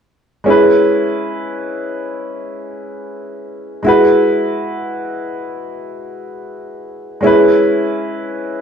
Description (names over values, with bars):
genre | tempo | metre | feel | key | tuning
reggae | free time | none | none | C# minor | A4 = 440 Hz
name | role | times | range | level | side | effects
warm concert grand piano | solo | 0.4-8.6 s | G#3 to B4 | -14 LUFS | equal | none
room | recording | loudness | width
wet studio reverb, RT60 0.8 s | band playing live in one room | -12 LUFS | side -7 dB against mid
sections
0.5-8.6 A section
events
none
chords
0.5 C#m7; 3.9 F#9sus4; 7.2 C#m7